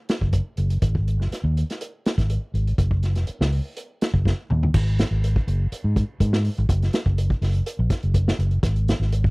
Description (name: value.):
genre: afrobeat.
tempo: 123 BPM.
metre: 4/4.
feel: straight.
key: unclear.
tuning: A4 = 440 Hz.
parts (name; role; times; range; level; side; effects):
vintage drum kit; drums; 0.1-9.3 s; crash cymbal, hi-hat, kick drum, snare drum, toms; -23 LUFS; equal; none.
fingered electric bass; bass; 0.2-9.3 s; E#1 to G#2; -21 LUFS; equal; none.
room: little or no reverb.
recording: dry, close 1970s-style studio recording.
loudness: -20 LUFS.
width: side -29 dB against mid.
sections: 0.0-4.7 A section; 4.7-9.3 B section.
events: drum fill 4.2-4.7.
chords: none.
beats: 0.33 | 0.82 1.31 1.80 2.29 | 2.78 3.27 3.76 4.25 | 4.74 5.22 5.71 6.20 | 6.69 7.17 7.66 8.14 | 8.63 9.12.